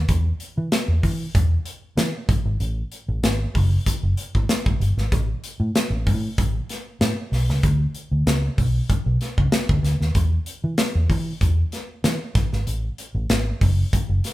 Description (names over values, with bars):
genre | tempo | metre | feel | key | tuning
polished 1980s jazz-funk pop | 95 BPM | 4/4 | swing 54% on 16ths | unclear | A4 = 440 Hz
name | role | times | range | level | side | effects
vintage muted fingered electric bass | bass | 0.0-14.2 s | F#1 to E3 | -21 LUFS | equal | none
modern studio drum kit | drums | 0.1-14.3 s | hi-hat, kick drum, snare drum | -23 LUFS | equal | none
room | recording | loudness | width
moderate stone room reverb, RT60 1.0 s | band playing live in one room | -20 LUFS | side -16 dB against mid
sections
0.0-14.3 A section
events
none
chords
none